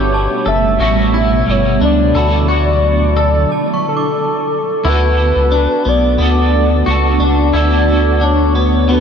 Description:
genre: dream pop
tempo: 89 BPM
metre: 4/4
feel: straight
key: D major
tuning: A4 = 441 Hz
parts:
  - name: warm velvety synth lead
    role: melody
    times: 0.0-9.0 s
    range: A4 to E5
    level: -18 LUFS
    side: equal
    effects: chorus, ping-pong delay
  - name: electric guitar at the edge of break-up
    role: accompaniment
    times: 0.0-9.0 s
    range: D3 to A4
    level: -22 LUFS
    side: right 3 dB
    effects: harmonic tremolo, ensemble chorus
  - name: shimmering ambient pad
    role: sustained chords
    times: 0.0-9.0 s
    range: B2 to F#4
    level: -19 LUFS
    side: right 3 dB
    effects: chorus, built-in reverb, phaser
  - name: clean electric guitar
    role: arpeggios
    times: 0.0-9.0 s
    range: B3 to A4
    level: -18 LUFS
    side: left 5 dB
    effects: lush chorus, ping-pong delay
  - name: round analog bass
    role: bass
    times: 0.0-9.0 s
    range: F#1 to D2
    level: -15 LUFS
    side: equal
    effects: none
  - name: synth chime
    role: texture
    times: 0.1-5.5 s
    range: A5 to D6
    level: -28 LUFS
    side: right 2 dB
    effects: ensemble chorus, ping-pong delay
room: moderate huge ambient reverb, RT60 7.9 s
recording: none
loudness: -11 LUFS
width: side -7 dB against mid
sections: 0.0-4.8 A section; 4.8-9.0 A section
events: stop 3.5-4.8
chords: 0.0 A9; 2.1 Dmaj9; 4.8 D6

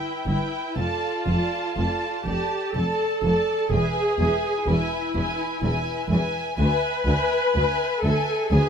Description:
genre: classical, slow romantic movement for string orchestra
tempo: 62 BPM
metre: 3/4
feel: rubato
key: unclear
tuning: A4 = 438 Hz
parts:
  - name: warm symphonic violin section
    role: melody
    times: 0.0-8.7 s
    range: G5 to A5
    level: -29 LUFS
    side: equal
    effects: none
  - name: rich symphonic violin section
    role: second line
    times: 0.0-8.7 s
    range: A4 to E5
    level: -32 LUFS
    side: left 2 dB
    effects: none
  - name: rich studio viola section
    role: accompaniment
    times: 0.0-8.7 s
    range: E4 to B4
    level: -25 LUFS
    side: equal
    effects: none
  - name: rich symphonic cello section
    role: bass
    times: 0.3-8.6 s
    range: D2 to G2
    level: -26 LUFS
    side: equal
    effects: none
  - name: rich symphonic double bass section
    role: bass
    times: 0.3-8.6 s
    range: E1 to D2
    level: -26 LUFS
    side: right 1 dB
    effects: none
room: moderate studio reverb, RT60 0.7 s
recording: minimal, uncompressed stereo recording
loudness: -21 LUFS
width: side -7 dB against mid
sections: 0.0-8.7 A section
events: none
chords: 0.0 Em; 0.8 Dm/F; 3.7 E; 6.6 E7/D

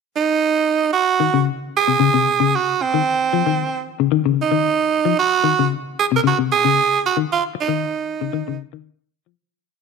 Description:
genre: afrobeat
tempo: 114 BPM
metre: 4/4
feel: swing 54% on 16ths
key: Eb dorian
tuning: A4 = 437 Hz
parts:
  - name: raspy tenor saxophone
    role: melody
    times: 0.2-8.6 s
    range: C4 to Bb4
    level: -18 LUFS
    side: right 7 dB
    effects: none
  - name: clean electric guitar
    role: arpeggios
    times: 1.2-9.3 s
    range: C3 to F3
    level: -20 LUFS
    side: left 12 dB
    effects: none
room: moderate echo chamber reverb, RT60 1.4 s, small room ambience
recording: 1960s-style stereo with parts hard left and right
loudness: -16 LUFS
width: side -5 dB against mid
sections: 0.0-0.9 pickup bar; 0.9-9.4 groove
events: fade-out 7.3-9.4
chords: 0.0 N.C.; 0.9 Ebm7; 3.1 F5; 5.2 Ebm7; 7.3 Dbsus2

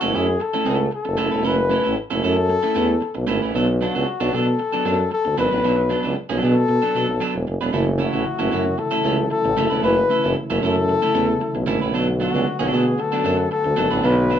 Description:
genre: disco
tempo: 114 BPM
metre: 4/4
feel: straight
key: F# minor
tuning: A4 = 440 Hz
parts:
  - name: breathy flugelhorn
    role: melody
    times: 0.0-14.4 s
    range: F#4 to B4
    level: -22 LUFS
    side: left 4 dB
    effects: none
  - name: electric guitar at the edge of break-up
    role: accompaniment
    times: 0.0-14.4 s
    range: F#3 to B4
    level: -24 LUFS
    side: right 5 dB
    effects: none
  - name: warm tuba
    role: bass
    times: 0.0-14.4 s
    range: E1 to B2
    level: -21 LUFS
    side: equal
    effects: none
  - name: tonewheel organ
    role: sustained chords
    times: 7.7-14.4 s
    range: C#3 to F#4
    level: -28 LUFS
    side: equal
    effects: overdrive, slow rotary speaker
room: moderate studio ambience, RT60 0.5 s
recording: band playing live in one room, nothing above 11.0 kHz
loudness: -18 LUFS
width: side -9 dB against mid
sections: 0.0-14.4 A section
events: none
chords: 0.0 F#m7; 3.5 Bm7; 7.7 F#m7; 11.9 Bm7

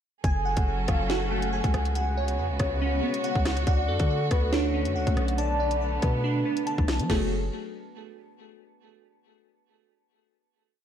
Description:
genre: hip hop, drill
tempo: 140 BPM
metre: 4/4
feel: half-time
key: F# minor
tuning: A4 = 439 Hz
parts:
  - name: soft octave-layered synth lead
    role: second line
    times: 0.2-7.3 s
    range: A4 to G#5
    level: -33 LUFS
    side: left 5 dB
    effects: chorus, ping-pong delay
  - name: warm studio string section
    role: sustained chords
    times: 0.2-7.3 s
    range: C#3 to A4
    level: -33 LUFS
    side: right 2 dB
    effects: none
  - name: glassy digital keys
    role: arpeggios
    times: 0.2-7.3 s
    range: A3 to A5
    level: -30 LUFS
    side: right 2 dB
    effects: chorus, low-pass filter, ping-pong delay
  - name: hard-hitting 808-style bass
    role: bass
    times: 0.2-7.5 s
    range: F#1 to F#3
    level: -28 LUFS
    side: equal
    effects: none
  - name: drill drum kit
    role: drums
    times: 0.2-7.2 s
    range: crash cymbal, hi-hat, kick drum, rim click, snare drum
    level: -27 LUFS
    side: equal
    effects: overdrive, vintage 12-bit sampler grit
room: moderate plate reverb, RT60 1.0 s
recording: dreamy mix soaked in reverb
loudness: -24 LUFS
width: side -9 dB against mid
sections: 0.2-7.1 hook; 7.1-8.8 final chord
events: none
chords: 0.2 F#madd9; 2.0 C#7sus4; 3.7 Dmaj7; 5.4 Bm7; 7.1 F#madd9

